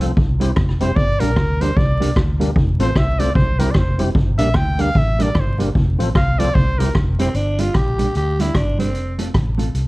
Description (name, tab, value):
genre	ska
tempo	150 BPM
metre	4/4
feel	swing 61% on 8ths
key	G dorian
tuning	A4 = 440 Hz
part	mellow electric guitar	accompaniment	0.0-9.7 s	F3 to A4	-25 LUFS	right 3 dB	spring reverb
part	tonewheel organ	stabs	0.0-7.3 s	Bb3 to C5	-27 LUFS	left 2 dB	slow rotary speaker
part	vintage muted fingered electric bass	bass	0.0-9.9 s	F1 to D2	-20 LUFS	equal	none
part	street-band drum kit	drums	0.0-9.9 s	hi-hat, kick drum, rim click	-18 LUFS	equal	none
part	clear trumpet	melody	0.8-6.9 s	Bb4 to G5	-23 LUFS	right 1 dB	none
part	growling tenor saxophone	melody	7.2-9.2 s	C4 to G4	-23 LUFS	equal	none
room	light reverb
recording	dark, warm production, vinyl crackle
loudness	-15 LUFS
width	side -20 dB against mid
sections	0.0-7.3 A section; 7.3-9.9 B section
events	trumpet solo 0.0-7.3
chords	0.2 C; 1.0 Gm; 2.6 F; 3.4 C; 4.2 Gm; 5.8 F; 6.5 C; 7.3 Gm; 8.9 F